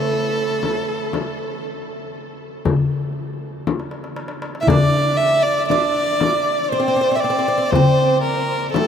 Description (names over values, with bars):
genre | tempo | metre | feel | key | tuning
Arabic maqam ensemble | 118 BPM (eighths) | 10/8 | straight | unclear | A4 = 440 Hz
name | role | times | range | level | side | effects
clear violin | melody | 0.0-8.9 s | A4 to E5 | -19 LUFS | right 1 dB | none
oud | second line | 0.0-8.9 s | A3 to E4 | -25 LUFS | right 3 dB | none
darbuka | percussion | 0.6-8.9 s | none | -23 LUFS | left 2 dB | none
frame drum | percussion | 0.6-8.9 s | none | -25 LUFS | left 5 dB | none
room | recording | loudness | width
wet huge ambient reverb, RT60 7.2 s | in a vast, echoing space | -16 LUFS | side -8 dB against mid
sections
0.0-4.7 A section; 4.7-8.9 B section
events
drum fill 3.7-4.7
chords
none